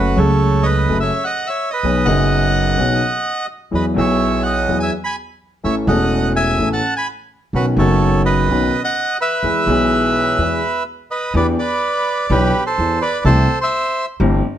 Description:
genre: tango.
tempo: 126 BPM.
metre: 4/4.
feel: rubato.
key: E major, E minor from 11.3 s.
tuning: A4 = 438 Hz.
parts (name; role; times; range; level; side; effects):
bandoneon; melody; 0.0-14.1 s; F#4 to B5; -18 LUFS; right 2 dB; none.
warm concert grand piano; accompaniment; 0.0-14.4 s; E1 to A4; -18 LUFS; left 1 dB; none.
upright bass; bass; 0.0-14.4 s; E1 to E2; -19 LUFS; right 1 dB; none.
room: moderate studio reverb, RT60 0.8 s.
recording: none.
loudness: -15 LUFS.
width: side -11 dB against mid.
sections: 0.0-11.3 A section; 11.3-14.6 B section.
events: break 10.9-11.3.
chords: 0.0 F#m; 1.8 B6; 3.7 Eadd9; 5.6 A; 7.5 Badd9; 9.4 E; 11.3 Em7; 13.2 C6.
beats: 0.42 0.89 1.37 | 1.84 2.32 2.79 3.27 | 3.74 4.22 4.69 5.17 | 5.64 6.12 6.59 7.06 | 7.54 8.01 8.49 8.96 | 9.44 9.91 10.39 10.87 | 11.34 11.82 12.30 12.77 | 13.25 13.72 14.20.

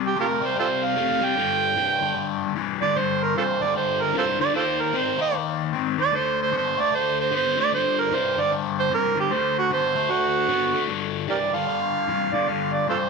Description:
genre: blues.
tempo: 151 BPM.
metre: 4/4.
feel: swing 63% on 8ths.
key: G minor.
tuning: A4 = 439 Hz.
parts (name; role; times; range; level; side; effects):
cranked stack guitar; riff; 0.0-13.1 s; G2 to C4; -25 LUFS; left 14 dB; overdrive, phaser.
overdriven harmonica; melody; 0.1-13.1 s; F4 to G5; -22 LUFS; right 7 dB; none.
room: wet spring reverb, RT60 2.5 s.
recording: 1960s-style stereo with parts hard left and right.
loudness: -21 LUFS.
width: side -4 dB against mid.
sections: 0.0-10.9 A section; 10.9-13.1 B section.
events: harmonica solo 0.0-10.9.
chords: 0.0 C5; 1.4 G5; 4.5 Eb5; 6.1 D5; 7.7 G5; 9.3 D7; 10.9 G5.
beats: 0.16 0.56 0.95 | 1.35 1.75 2.15 2.55 | 2.95 3.35 3.74 4.14 | 4.54 4.94 5.33 5.73 | 6.13 6.53 6.92 7.32 | 7.71 8.11 8.51 8.90 | 9.30 9.69 10.09 10.48 | 10.88 11.28 11.67 12.07 | 12.46 12.86.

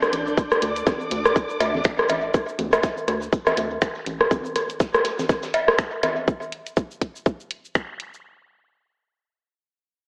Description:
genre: minimal techno.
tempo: 122 BPM.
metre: 4/4.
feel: swing 58% on 16ths.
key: unclear.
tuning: A4 = 444 Hz.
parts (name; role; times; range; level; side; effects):
garage drum kit; drums; 0.0-8.2 s; finger snaps, hi-hat, shaker; -32 LUFS; equal; studio reverb.
warm soul drum kit; drums; 0.0-6.2 s; hi-hat, shaker, snare drum; -41 LUFS; equal; none.
electronic rim click, congas and cowbell; percussion; 0.0-6.1 s; none; -24 LUFS; equal; studio reverb, tape echo.
rich symphonic string section; texture; 0.0-2.4 s; D4 to G6; -31 LUFS; equal; sidechain pumping.
rubbery square bass; bass; 0.1-4.3 s; A1 to D2; -33 LUFS; equal; sidechain pumping.
electronic kick drum; drums; 0.4-7.9 s; none; -23 LUFS; equal; studio reverb.
room: moderate spring reverb, RT60 1.6 s, small room ambience.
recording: echo-heavy mix, small speaker sound.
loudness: -23 LUFS.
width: mono.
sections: 0.0-8.2 A section.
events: drop 0.0-8.2.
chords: 0.0 D5.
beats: | 0.38 0.87 1.36 1.85 | 2.34 2.83 3.33 3.82 | 4.31 4.80 5.29 5.79 | 6.28 6.77 7.26 7.75.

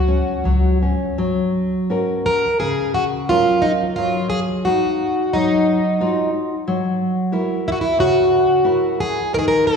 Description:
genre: fado-style ballad.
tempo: 88 BPM.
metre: 4/4.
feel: uneven beats, rubato.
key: F# major.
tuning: A4 = 440 Hz.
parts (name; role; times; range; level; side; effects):
picked plugged-in twelve-string acoustic guitar; melody; 0.0-9.8 s; D#4 to A#4; -18 LUFS; equal; none.
nylon-string guitar; accompaniment; 0.0-9.8 s; C#3 to E#5; -21 LUFS; left 1 dB; none.
upright bass; bass; 0.0-0.9 s; C#2; -20 LUFS; left 1 dB; none.
room: wet concert hall reverb, RT60 1.9 s.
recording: heard from further back in the room.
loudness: -16 LUFS.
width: side -6 dB against mid.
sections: 0.0-1.2 A section; 1.2-9.8 A section.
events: none.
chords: 0.0 F#5; 1.2 F#; 4.0 D#madd9/F#; 6.7 F#7.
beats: 0.44 | 1.18 1.90 2.60 3.30 | 3.98 4.66 5.34 6.00 | 6.67 7.33 7.98 8.65 | 9.33.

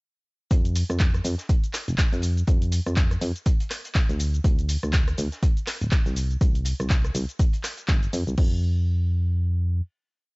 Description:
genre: piano house.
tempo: 122 BPM.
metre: 4/4.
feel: swing 58% on 16ths.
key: unclear.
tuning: A4 = 440 Hz.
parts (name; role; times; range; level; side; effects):
solid FM bass; bass; 0.5-9.8 s; D1 to F2; -24 LUFS; equal; sidechain pumping.
crunchy breakbeat drum kit; drums; 0.5-8.3 s; hi-hat, snare drum; -43 LUFS; equal; none.
electronic kick drum; drums; 0.5-8.5 s; none; -21 LUFS; equal; none.
punchy analog drum machine; drums; 0.5-8.5 s; cabasa, crash cymbal, handclaps, hi-hat, rim click; -31 LUFS; equal; none.
room: small room ambience.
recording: dry, gritty hardware recording, transformer saturation, cassette tape, nothing above 7.9 kHz.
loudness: -21 LUFS.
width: side -30 dB against mid.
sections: 0.5-8.4 drop; 8.4-10.4 final chord.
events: drop 0.5-8.4.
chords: none.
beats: | 0.51 1.00 1.49 1.98 | 2.48 2.97 3.46 3.95 | 4.44 4.93 5.43 5.92 | 6.41 6.90 7.39 7.89 | 8.38 8.87 9.36.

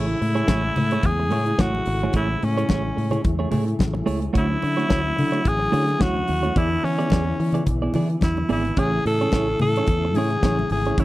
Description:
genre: disco.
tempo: 109 BPM.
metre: 4/4.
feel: swing 56% on 16ths.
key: A major.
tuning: A4 = 438 Hz.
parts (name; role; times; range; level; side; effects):
raspy tenor saxophone; melody; 0.0-11.0 s; C#4 to A4; -24 LUFS; equal; none.
clean electric guitar; accompaniment; 0.0-11.0 s; A3 to D5; -28 LUFS; right 4 dB; spring reverb.
mellow tonewheel organ; sustained chords; 0.0-11.0 s; C#3 to E4; -29 LUFS; left 2 dB; chorus vibrato, wide subtle chorus.
fingered electric bass; bass; 0.0-11.0 s; G#1 to E3; -24 LUFS; equal; none.
damped 70s drum kit; drums; 0.2-11.0 s; hi-hat, kick drum, snare drum; -22 LUFS; equal; none.
congas; percussion; 0.5-10.7 s; none; -30 LUFS; left 3 dB; none.
room: small room ambience.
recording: dry, close 1970s-style studio recording.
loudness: -19 LUFS.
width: side -16 dB against mid.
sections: 0.0-11.0 A section.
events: none.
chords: 0.0 Amaj7; 4.4 Dmaj9; 6.6 E7; 8.8 Amaj7.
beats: 0.48 1.03 1.59 | 2.14 2.69 3.25 3.80 | 4.35 4.91 5.46 6.01 | 6.56 7.11 7.67 8.22 | 8.77 9.32 9.87 10.43 | 10.98.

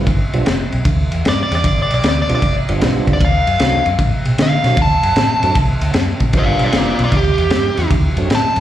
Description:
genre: electric blues shuffle.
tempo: 153 BPM.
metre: 4/4.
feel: swing 67% on 8ths.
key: G mixolydian.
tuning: A4 = 442 Hz.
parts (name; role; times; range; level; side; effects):
tonewheel organ; accompaniment; 0.0-8.3 s; F3 to F#4; -23 LUFS; right 6 dB; slow rotary speaker, overdrive, chorus vibrato, slapback echo.
vintage muted fingered electric bass; bass; 0.0-8.6 s; F1 to D3; -18 LUFS; equal; none.
crunchy breakbeat drum kit; drums; 0.1-8.6 s; kick drum, ride cymbal, snare drum; -17 LUFS; equal; none.
biting overdriven guitar; melody; 1.3-8.6 s; F4 to A5; -18 LUFS; equal; spring reverb, slapback echo, tape echo.
room: little or no reverb.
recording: live gig heard through the venue's PA, club reverb.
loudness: -13 LUFS.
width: side -12 dB against mid.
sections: 0.0-8.6 A section.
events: overdriven electric guitar solo 0.0-8.6.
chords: 0.1 G7; 3.2 D7; 6.3 G7; 7.9 D7.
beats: | 0.07 0.46 0.86 1.25 | 1.64 2.03 2.42 2.81 | 3.21 3.60 3.99 4.38 | 4.77 5.16 5.56 5.95 | 6.34 6.73 7.12 7.51 | 7.91 8.30.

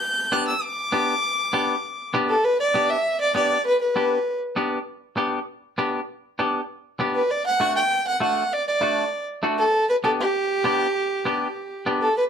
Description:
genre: latin.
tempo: 197 BPM.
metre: 4/4.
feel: straight.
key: G major.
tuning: A4 = 438 Hz.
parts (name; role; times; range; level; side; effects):
warm violin; melody; 0.0-4.4, 7.1-12.2 s; G4 to G6; -21 LUFS; equal; none.
semi-hollow electric guitar; accompaniment; 0.3-12.1 s; A3 to G4; -24 LUFS; left 1 dB; none.
room: moderate studio reverb, RT60 0.8 s.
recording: lossy compression artefacts.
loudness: -20 LUFS.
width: side -7 dB against mid.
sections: 0.0-2.4 A section; 2.4-12.2 B section.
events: none.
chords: 0.0 G; 7.3 D; 9.7 G.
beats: | 0.02 0.32 0.62 0.93 | 1.23 1.53 1.84 2.14 | 2.44 2.75 3.05 3.35 | 3.66 3.96 4.26 4.57 | 4.87 5.17 5.48 5.78 | 6.09 6.39 6.70 7.00 | 7.30 7.61 7.91 8.22 | 8.52 8.82 9.13 9.43 | 9.74 10.04 10.35 10.65 | 10.96 11.26 11.56 11.87 | 12.17.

